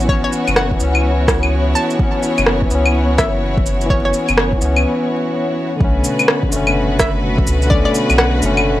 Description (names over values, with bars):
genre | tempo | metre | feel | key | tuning
future garage | 126 BPM | 4/4 | swing 63% on 16ths | B minor | A4 = 440 Hz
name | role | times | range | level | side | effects
barky tine electric piano | accompaniment | 0.0-8.8 s | D3 to C#4 | -20 LUFS | left 2 dB | overdrive, sidechain pumping, tape echo
dark studio string section | sustained chords | 0.0-8.8 s | B2 to C#5 | -21 LUFS | equal | sidechain pumping
soft dub sub bass | bass | 0.0-8.8 s | F#1 to C#2 | -18 LUFS | equal | sidechain pumping
electronic shaker, claves, rim click and cabasa | drums | 0.0-8.6 s | none | -17 LUFS | equal | overdrive
hollow square pluck | melody | 0.1-4.1, 7.0-8.4 s | C#5 to A5 | -24 LUFS | left 1 dB | chorus, tape echo
electronic kick drum | drums | 0.1-7.8 s | none | -18 LUFS | equal | overdrive
room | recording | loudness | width
little or no reverb | dry, gritty hardware recording, vinyl crackle | -13 LUFS | side -14 dB against mid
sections
0.0-5.8 A section; 5.8-8.8 B section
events
break 4.9-5.8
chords
0.0 F#7sus4; 5.8 Bm7